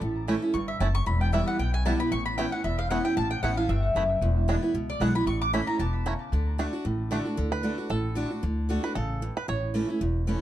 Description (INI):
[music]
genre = bluegrass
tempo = 228 BPM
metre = 4/4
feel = swing 55% on 8ths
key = D major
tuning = A4 = 439 Hz
[part]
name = picked steel-string acoustic guitar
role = accompaniment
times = 0.0-10.4 s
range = E2 to F#4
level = -29 LUFS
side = right 1 dB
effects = none
[part]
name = upright bass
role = bass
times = 0.0-10.3 s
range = E1 to D2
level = -28 LUFS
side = equal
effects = none
[part]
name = bluegrass banjo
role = melody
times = 0.3-9.7 s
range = G3 to C#5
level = -33 LUFS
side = right 4 dB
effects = plate reverb
[part]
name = mandolin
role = melody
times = 0.5-6.5 s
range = D5 to D6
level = -31 LUFS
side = left 2 dB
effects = plate reverb, tape echo
[sound]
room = light reverb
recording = dark, warm production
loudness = -24 LUFS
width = side -12 dB against mid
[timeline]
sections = 0.0-7.4 A section; 7.4-10.4 A section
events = mandolin solo 0.0-7.4; five-string banjo solo 7.4-10.4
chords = 0.0 A; 1.1 Em; 2.1 Aadd9; 4.2 E7; 5.3 A; 6.3 D; 9.5 A